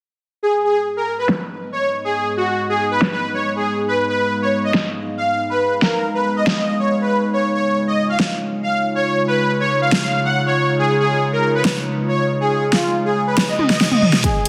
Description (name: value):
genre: heavy wobble dubstep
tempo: 139 BPM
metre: 4/4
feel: half-time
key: G# dorian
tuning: A4 = 438 Hz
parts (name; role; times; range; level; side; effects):
- soft supersaw; melody; 0.4-14.5 s; E#4 to F#5; -21 LUFS; equal; phaser, digital delay
- evolving wavetable pad; sustained chords; 1.6-14.5 s; G#2 to E#5; -25 LUFS; equal; chorus, built-in reverb, sidechain pumping
- dubstep drum kit; drums; 1.3-14.5 s; hi-hat, snare drum, toms; -21 LUFS; equal; overdrive, low-pass filter on snare, small room ambience, low-pass filter on toms, low-pass filter on hats
- reverse cymbal and riser; sound effects; 13.6-14.5 s; none; -28 LUFS; equal; none
- electronic kick drum; drums; 14.2-14.3 s; none; -21 LUFS; equal; small room ambience
room: moderate plate reverb, RT60 2.2 s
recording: dense, heavily limited modern master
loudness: -18 LUFS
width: mono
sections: 0.4-14.2 A section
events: filter sweep on drum 0.4-14.2; filter sweep on ambient pad 0.4-14.2; reverse cymbal 13.6-14.2; drum fill 13.6-14.2, 14.2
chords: 0.4 G#m; 7.3 C#add9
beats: | 0.43 0.86 1.29 1.72 | 2.15 2.58 3.02 3.45 | 3.88 4.31 4.74 5.17 | 5.61 6.04 6.47 6.90 | 7.33 7.76 8.20 8.63 | 9.06 9.49 9.92 10.35 | 10.79 11.22 11.65 12.08 | 12.51 12.94 13.38 13.81 | 14.24